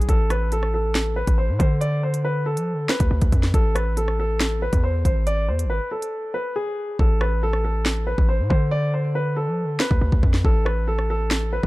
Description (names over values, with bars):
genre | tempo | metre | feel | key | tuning
hip hop, drill | 139 BPM | 4/4 | half-time | A harmonic minor | A4 = 440 Hz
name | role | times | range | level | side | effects
dark concert grand piano | melody | 0.0-11.7 s | G#4 to D5 | -26 LUFS | equal | none
hard-hitting 808-style bass | bass | 0.0-11.7 s | G#1 to F3 | -22 LUFS | equal | none
drill drum kit | drums | 0.0-11.7 s | hi-hat, kick drum, rim click, snare drum | -21 LUFS | equal | none
room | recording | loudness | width
digital ambience | dark, warm production | -19 LUFS | side -19 dB against mid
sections
0.0-11.7 A section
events
break 6.1-7.0; hi-hats muted 7.0-11.7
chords
0.1 Amadd9; 1.8 Dm; 3.5 A5; 5.3 E; 7.0 Amadd9; 8.7 Dm; 10.4 A5